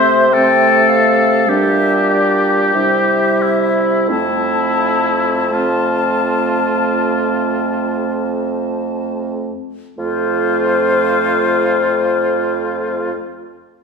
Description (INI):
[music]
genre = classical, slow romantic movement for wind quintet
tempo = 38-54 BPM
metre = 4/4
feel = rubato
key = F major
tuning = A4 = 440 Hz
[part]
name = bright silver concert flute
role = melody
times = 0.0-13.1 s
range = C5 to A5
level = -21 LUFS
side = left 6 dB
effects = none
[part]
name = warm oboe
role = second line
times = 0.0-13.1 s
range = E4 to C5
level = -17 LUFS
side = left 3 dB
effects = none
[part]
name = clear clarinet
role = accompaniment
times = 0.0-13.1 s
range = C4 to F4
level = -22 LUFS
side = right 4 dB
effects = none
[part]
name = dark French horn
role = accompaniment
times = 0.0-13.1 s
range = G3 to A3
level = -23 LUFS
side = right 1 dB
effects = none
[part]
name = clear bassoon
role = bass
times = 0.0-13.1 s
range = F2 to C3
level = -18 LUFS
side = right 2 dB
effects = none
[sound]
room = wet recital hall reverb, RT60 1.6 s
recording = heard from further back in the room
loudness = -13 LUFS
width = side -5 dB against mid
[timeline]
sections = 0.0-10.0 A section; 10.0-13.8 B section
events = slowing down 0.0-10.0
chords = 0.0 Am/C; 1.5 Gm/Bb; 2.8 C; 4.1 F